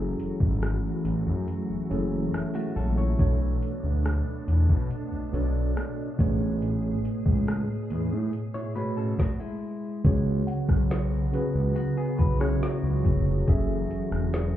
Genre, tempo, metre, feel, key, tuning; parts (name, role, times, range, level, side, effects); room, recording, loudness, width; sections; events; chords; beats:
contemporary R&B; 70 BPM; 4/4; straight; F# minor; A4 = 440 Hz
tine electric piano; accompaniment; 0.0-14.6 s; A2 to A5; -29 LUFS; right 1 dB; medium stereo tremolo
glassy FM pad; sustained chords; 0.0-14.6 s; B2 to G#4; -34 LUFS; equal; ensemble chorus, built-in reverb
smooth gliding synth bass; bass; 0.0-14.6 s; E1 to B2; -27 LUFS; equal
smooth R&B drum kit; drums; 0.2-14.5 s; hi-hat, kick drum, rim click, snare drum; -25 LUFS; equal
direct-recorded clean electric guitar; arpeggios; 2.5-3.4, 8.5-13.4 s; G#3 to C#5; -36 LUFS; left 3 dB
glassy synth bell; texture; 10.5-13.0 s; F#5; -47 LUFS; left 2 dB; chorus, ping-pong delay
little or no reverb; heard muffled through a wall, club ambience, EQ; -24 LUFS; side -12 dB against mid
0.0-10.0 A section; 10.0-14.6 B section
tine electric piano fill 1.5-3.2, 14.3
0.0 F#m9; 3.2 Bm9; 6.2 Amaj9; 10.0 C#7sus4; 13.5 F#m9
0.62 1.48 2.33 | 3.19 4.05 4.91 5.76 | 6.62 7.48 8.33 9.19 | 10.05 10.90 11.76 12.62 | 13.48 14.33